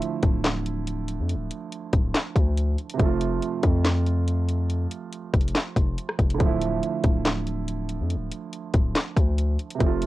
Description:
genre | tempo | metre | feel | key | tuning
hip hop, trap | 141 BPM | 4/4 | half-time | D minor | A4 = 440 Hz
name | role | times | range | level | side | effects
dark concert grand piano | accompaniment | 0.0-10.1 s | C3 to F4 | -30 LUFS | right 7 dB | cassette tape
trap drum kit | drums | 0.0-10.1 s | handclaps, hi-hat, kick drum, rim click, snare drum | -23 LUFS | left 1 dB | cassette tape
distorted 808-style bass | bass | 0.2-10.1 s | D1 to F2 | -25 LUFS | left 1 dB | distortion
room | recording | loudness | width
little or no reverb | home recording on cassette | -22 LUFS | side -16 dB against mid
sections
0.0-10.1 A section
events
none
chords
0.0 Dmadd9; 3.0 F; 6.4 Dmadd9

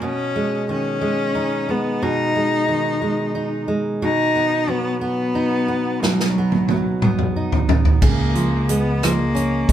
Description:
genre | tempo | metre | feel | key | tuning
six-eight pop ballad | 60 BPM (dotted quarters) | 6/8 | straight | unclear | A4 = 440 Hz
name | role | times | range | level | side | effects
rich cello | melody | 0.0-9.7 s | F#3 to D#4 | -21 LUFS | left 2 dB | none
fingerpicked steel-string acoustic guitar | accompaniment | 0.0-9.7 s | B2 to D#4 | -23 LUFS | right 2 dB | none
natural country drum kit | drums | 6.0-9.7 s | crash cymbal, hi-hat, kick drum, rim click, snare drum, toms | -18 LUFS | right 1 dB | none
sustaining fretless electric bass | bass | 8.0-9.7 s | B1 to C#2 | -22 LUFS | equal | none
room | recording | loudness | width
moderate studio reverb, RT60 0.6 s | band playing live in one room | -17 LUFS | side -11 dB against mid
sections
0.0-8.0 A section; 8.0-9.7 B section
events
drum fill 6.0-8.0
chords
0.0 G#m/B; 4.0 B; 8.0 C#

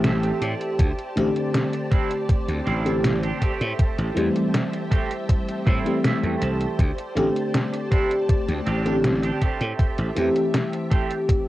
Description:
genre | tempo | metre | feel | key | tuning
vaporwave | 80 BPM | 4/4 | straight | A minor | A4 = 438 Hz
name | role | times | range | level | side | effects
FM electric piano with soft pad layer | accompaniment | 0.0-11.5 s | D3 to G4 | -24 LUFS | left 1 dB | tremolo, lush chorus, cassette tape, analog delay
soft string machine | sustained chords | 0.0-11.5 s | G4 to A5 | -33 LUFS | equal | ensemble chorus, cassette tape
clean electric guitar | riff | 0.0-11.3 s | A3 to A5 | -31 LUFS | right 6 dB | analog chorus, cassette tape, analog delay
slap bass | bass | 0.0-10.3 s | A1 to A2 | -25 LUFS | equal | none
detuned 8-bit digital drum machine | drums | 0.0-11.4 s | hi-hat, snare drum | -25 LUFS | equal | cassette tape
electronic kick drum | drums | 0.8-11.4 s | none | -21 LUFS | equal | cassette tape
room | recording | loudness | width
light reverb | home recording on cassette | -20 LUFS | side -16 dB against mid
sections
0.0-11.5 A section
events
clean electric guitar fill 0.0-0.8, 5.7-6.8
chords
0.0 Am7

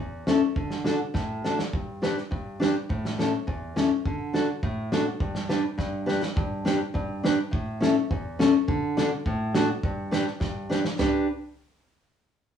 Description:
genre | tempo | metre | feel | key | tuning
alpine folk, alpine dance band | 104 BPM | 2/4 | straight | G major | A4 = 440 Hz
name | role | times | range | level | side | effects
fingerpicked steel-string acoustic guitar | accompaniment | 0.0-11.3 s | E2 to B4 | -25 LUFS | left 1 dB | none
loose indie drum kit | drums | 0.3-11.1 s | hi-hat, kick drum, ride cymbal, snare drum, toms | -29 LUFS | right 1 dB | none
room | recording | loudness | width
wet studio reverb, RT60 0.6 s | band playing live in one room, studio ambience | -24 LUFS | side -8 dB against mid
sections
0.0-6.4 A section; 6.4-11.0 B section; 11.0-12.1 C section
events
drum fill 1.1-1.7, 5.8-6.4, 10.4-11.0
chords
0.0 A/E; 0.6 D; 1.7 G; 2.9 A; 4.1 D; 5.2 G; 7.5 A; 8.7 D; 9.8 G

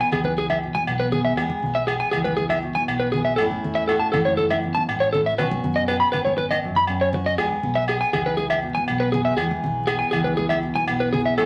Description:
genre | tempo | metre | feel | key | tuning
highlife guitar band | 120 BPM | 4/4 | straight | E major | A4 = 437 Hz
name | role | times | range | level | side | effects
fingerpicked steel-string acoustic guitar | accompaniment | 0.0-11.5 s | E2 to G#4 | -28 LUFS | equal | none
electric guitar at the edge of break-up | arpeggios | 0.0-11.5 s | G#4 to B5 | -24 LUFS | equal | none
fingered electric bass | bass | 0.1-11.5 s | F#1 to F#2 | -33 LUFS | equal | none
agogo bells | percussion | 0.1-11.5 s | none | -31 LUFS | equal | none
congas | percussion | 0.1-11.3 s | none | -34 LUFS | equal | none
room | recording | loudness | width
wet studio reverb, RT60 0.7 s | vinyl crackle | -22 LUFS | mono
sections
0.0-11.5 A section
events
none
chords
0.0 E; 3.4 A; 5.4 Badd9; 7.4 E

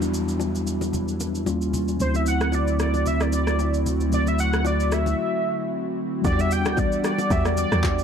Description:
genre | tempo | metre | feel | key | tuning
amapiano | 113 BPM | 4/4 | swing 55% on 16ths | E minor | A4 = 440 Hz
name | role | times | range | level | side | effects
mellow tine electric piano | accompaniment | 0.0-8.0 s | D#2 to F#4 | -27 LUFS | left 1 dB | medium stereo tremolo, low-pass filter
airy breathy pad | sustained chords | 0.0-8.0 s | D3 to F#5 | -29 LUFS | right 2 dB | chorus, sidechain pumping, low-pass filter
smooth R&B drum kit | drums | 0.0-8.0 s | handclaps, kick drum, rim click, shaker | -28 LUFS | equal | overdrive
bongos and congas | percussion | 0.0-8.0 s | none | -34 LUFS | left 5 dB | none
downlifter | sound effects | 0.0-2.0 s | none | -43 LUFS | right 1 dB | none
warm velvety synth lead | melody | 2.0-8.0 s | C5 to G5 | -26 LUFS | equal | chorus, low-pass filter, digital delay
saturated sub bass | bass | 2.0-5.1 s | D2 | -24 LUFS | equal | none
percussive organ stab | stabs | 6.2-8.0 s | F#4 to D5 | -31 LUFS | right 10 dB | chorus, digital delay
woody log drum bass | bass | 6.2-8.0 s | D2 to E2 | -25 LUFS | equal | none
room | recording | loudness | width
light reverb | dark, warm production | -21 LUFS | side -7 dB against mid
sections
0.0-6.2 A section; 6.2-8.0 B section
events
filter sweep 0.0-6.2; break 5.2-6.2; drop 6.2-8.0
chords
0.0 Em9; 1.5 D#9; 2.0 D9; 6.2 Em9

